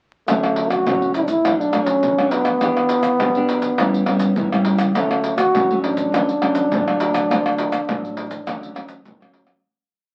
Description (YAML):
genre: samba and choro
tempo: 102 BPM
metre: 4/4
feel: straight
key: D major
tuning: A4 = 440 Hz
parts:
  - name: breathy trombone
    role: melody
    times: 0.3-9.0 s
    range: A3 to F#4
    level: -22 LUFS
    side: equal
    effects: none
  - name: nylon-string guitar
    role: accompaniment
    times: 0.3-9.6 s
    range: F#2 to G4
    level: -25 LUFS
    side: equal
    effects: none
  - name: upright bass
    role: bass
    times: 0.3-9.6 s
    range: A1 to E2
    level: -36 LUFS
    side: equal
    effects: none
  - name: maracas, surdo, pandeiro and tamborim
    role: percussion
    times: 0.3-9.6 s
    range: none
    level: -25 LUFS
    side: equal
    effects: none
room: wet club reverb, RT60 0.6 s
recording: very old 78 rpm record, vinyl crackle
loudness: -19 LUFS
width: mono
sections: 0.3-9.6 A section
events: fade-out 7.3-9.6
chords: 0.3 Dmaj7; 1.4 Bm7; 2.6 Em7; 3.8 A7; 5.0 Dmaj7